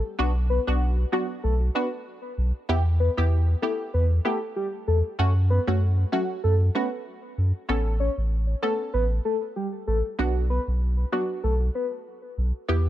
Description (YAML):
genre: dancehall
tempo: 96 BPM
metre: 4/4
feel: swing 56% on 16ths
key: unclear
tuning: A4 = 442 Hz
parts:
  - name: punchy chord stab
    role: accompaniment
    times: 0.2-12.9 s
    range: A3 to A4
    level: -29 LUFS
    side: equal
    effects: chorus, phaser
  - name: warm sub bass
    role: bass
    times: 0.2-12.9 s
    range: A1 to F#2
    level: -22 LUFS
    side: equal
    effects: none
  - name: soft octave-layered synth lead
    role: melody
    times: 0.5-11.9 s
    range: F#4 to C#5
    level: -30 LUFS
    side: left 1 dB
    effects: chorus, phaser, tape echo
room: digital ambience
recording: none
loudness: -22 LUFS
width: side -13 dB against mid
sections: 0.0-7.7 A section; 7.7-12.9 B section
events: none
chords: 0.2 Bm; 2.7 Em; 5.2 F#m; 7.7 Aadd9; 10.2 Bm